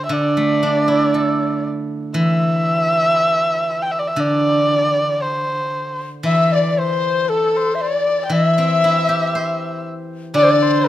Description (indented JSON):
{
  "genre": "chinese traditional, Chinese chamber ensemble",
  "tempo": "59 BPM",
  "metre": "2/4",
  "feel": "rubato",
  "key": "unclear",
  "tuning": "A4 = 439 Hz",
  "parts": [
    { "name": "dark erhu", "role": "melody", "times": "0.0-10.9 s", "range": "A4 to G5", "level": "-18 LUFS", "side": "equal", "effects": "none" },
    { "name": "steel-string zither", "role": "accompaniment", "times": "0.0-10.9 s", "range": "D3 to C5", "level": "-20 LUFS", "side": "right 1 dB", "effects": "none" },
    { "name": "reedy large dizi", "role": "second line", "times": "6.2-10.9 s", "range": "A4 to E5", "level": "-19 LUFS", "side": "left 5 dB", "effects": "none" }
  ],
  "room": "light reverb",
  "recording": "close, detailed microphones",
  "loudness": "-15 LUFS",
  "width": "side -13 dB against mid",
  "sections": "0.0-10.9 A section",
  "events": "none",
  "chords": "none",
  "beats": "| 0.12 1.14 | 2.16 3.18 | 4.19 5.22 | 6.26 7.30 | 8.33 9.35 | 10.37"
}